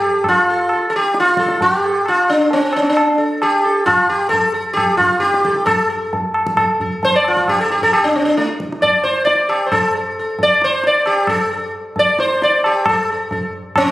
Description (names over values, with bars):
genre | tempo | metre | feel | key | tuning
indian classical, Hindustani | 133 BPM | 4/4 | straight | A raga malkauns | A4 = 440 Hz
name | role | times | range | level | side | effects
sitar | melody | 0.0-13.9 s | A3 to D5 | -14 LUFS | equal | none
tabla | percussion | 0.0-13.9 s | none | -20 LUFS | equal | none
room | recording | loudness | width
moderate recital hall reverb, RT60 1.5 s | recorded on a phone in the room, studio reverb, compression | -13 LUFS | side -16 dB against mid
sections
0.0-12.9 A section; 12.9-13.9 B section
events
none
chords
none